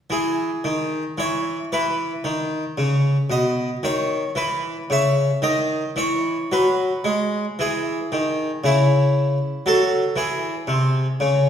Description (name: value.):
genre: classical, baroque-style suite movement for harpsichord.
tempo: 54-59 BPM.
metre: 4/4.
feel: rubato.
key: E major.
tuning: A4 = 442 Hz.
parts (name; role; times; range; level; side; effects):
harpsichord; solo; 0.1-11.5 s; B2 to E5; -19 LUFS; equal; none.
room: wet recital hall reverb, RT60 1.4 s.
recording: heard from further back in the room.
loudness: -19 LUFS.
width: side -9 dB against mid.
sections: 0.1-11.5 A section.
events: none.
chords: 0.1 E; 2.2 B; 4.4 E; 8.6 C#m; 10.7 G#/B#.